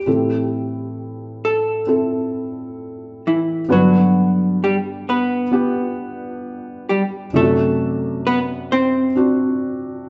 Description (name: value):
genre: pop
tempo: 66 BPM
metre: 4/4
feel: straight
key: G major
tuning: A4 = 440 Hz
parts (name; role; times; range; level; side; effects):
- vintage hollow-body jazz guitar; melody; 0.0-10.0 s; E3 to C5; -21 LUFS; equal; none
- felt-muted upright piano; accompaniment; 0.0-10.1 s; F#2 to F#5; -24 LUFS; equal; none
room: wet stone room reverb, RT60 1.3 s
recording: band playing live in one room, nothing above 7.9 kHz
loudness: -19 LUFS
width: mono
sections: 0.0-3.7 A section; 3.7-10.1 B section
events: none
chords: 0.1 Am; 3.7 Gmaj7; 7.3 D7/F#